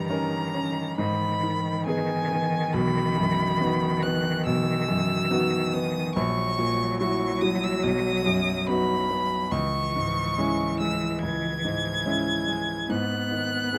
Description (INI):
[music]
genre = classical, slow romantic movement for piano trio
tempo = 71 BPM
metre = 4/4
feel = rubato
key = unclear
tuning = A4 = 441 Hz
[part]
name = rich violin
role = melody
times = 0.0-13.8 s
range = G#5 to G#6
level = -31 LUFS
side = equal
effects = none
[part]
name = rich cello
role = second line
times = 0.0-13.8 s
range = D#3 to B3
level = -32 LUFS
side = equal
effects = none
[part]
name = warm grand piano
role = accompaniment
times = 0.0-13.8 s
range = A#1 to A#4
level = -29 LUFS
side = equal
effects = none
[sound]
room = light reverb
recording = none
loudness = -26 LUFS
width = mono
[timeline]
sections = 0.0-13.8 A section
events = none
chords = 0.0 D#7/G; 1.0 G#m; 2.7 B; 6.2 F#7/A#; 7.8 B; 9.5 C#m; 12.9 G#m